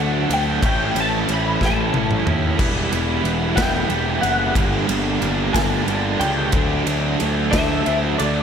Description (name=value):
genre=quiet-loud alternative rock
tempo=61 BPM (dotted quarters)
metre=6/8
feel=straight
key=unclear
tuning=A4 = 439 Hz
part: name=twelve-string electric guitar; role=melody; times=0.0-8.4 s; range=D5 to B5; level=-24 LUFS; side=left 1 dB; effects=ensemble chorus, slapback echo
part: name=cranked stack guitar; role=riff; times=0.0-8.4 s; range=G2 to E4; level=-25 LUFS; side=right 10 dB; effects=overdrive, tremolo, slapback echo
part: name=scooped high-gain guitar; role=riff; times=0.0-8.4 s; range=G2 to E4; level=-26 LUFS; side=right 3 dB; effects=distortion, slapback echo
part: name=thick fuzz guitar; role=riff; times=0.0-8.4 s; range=G2 to E4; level=-27 LUFS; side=left 10 dB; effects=distortion, slapback echo
part: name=fuzz picked electric bass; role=bass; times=0.0-8.4 s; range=E1 to D#2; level=-23 LUFS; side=equal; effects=overdrive
part: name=big rock drum kit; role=drums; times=0.3-8.3 s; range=crash cymbal, kick drum, ride cymbal, snare drum, toms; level=-24 LUFS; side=equal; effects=none
room=moderate lush hall reverb, RT60 1.8 s, studio reverb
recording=big arena sound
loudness=-17 LUFS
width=side -7 dB against mid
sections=0.0-8.4 A section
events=drum fill 1.6-2.6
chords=0.0 D; 0.6 A; 2.6 Em; 4.6 Gm; 6.5 D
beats=| 0.61 1.60 | 2.58 3.57 | 4.55 5.54 | 6.53 7.52